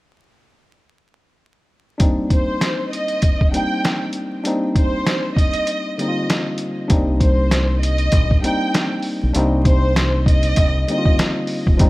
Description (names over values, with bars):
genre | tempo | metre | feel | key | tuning
hip hop, boom-bap hip-hop | 98 BPM | 4/4 | swing 59% on 16ths | C minor | A4 = 440 Hz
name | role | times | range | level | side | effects
mellow tine electric piano | accompaniment | 2.0-11.9 s | D3 to F4 | -22 LUFS | left 1 dB | cassette tape, high-pass filter, low-pass filter
trip hop sampler-style drum kit | drums | 2.0-11.9 s | hi-hat, kick drum, snare drum | -18 LUFS | equal | none
warm studio violin section | melody | 2.3-11.3 s | C5 to G5 | -24 LUFS | right 1 dB | high-pass filter, low-pass filter, tape echo
deep dub fingered electric bass | bass | 6.9-11.9 s | E1 to C2 | -18 LUFS | equal | none
room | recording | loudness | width
digital ambience | vinyl crackle | -16 LUFS | side -20 dB against mid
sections
2.0-6.9 A section; 6.9-11.9 B section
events
break 5.7-6.9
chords
2.0 Cm7